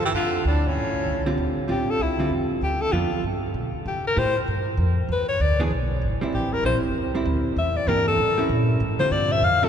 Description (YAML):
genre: jazz, small-group swing and bop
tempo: 194 BPM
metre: 4/4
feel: swing 62% on 8ths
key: D minor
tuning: A4 = 440 Hz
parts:
  - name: clear alto saxophone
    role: melody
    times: 0.0-9.7 s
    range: C#4 to F5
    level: -24 LUFS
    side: left 2 dB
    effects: none
  - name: bright baritone saxophone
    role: second line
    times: 0.0-1.3 s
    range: A2 to E3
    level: -31 LUFS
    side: right 4 dB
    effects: none
  - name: upright bass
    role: bass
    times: 0.0-9.7 s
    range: G1 to C3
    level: -25 LUFS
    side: equal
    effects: none
  - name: vintage hollow-body jazz guitar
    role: accompaniment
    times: 1.3-9.7 s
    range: D3 to G#4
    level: -27 LUFS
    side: right 2 dB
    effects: none
room: wet cathedral reverb, RT60 6.2 s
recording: recorded in a church or concert hall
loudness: -21 LUFS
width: side -8 dB against mid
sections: 0.0-1.4 A section; 1.4-9.7 B section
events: alto saxophone solo 1.4-9.7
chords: 0.0 Dmadd11; 0.8 A7alt; 1.4 Dm11; 2.6 G7; 3.9 C6; 5.1 E7; 6.3 Am7; 7.6 Em7b5; 8.2 A7; 8.8 Dm11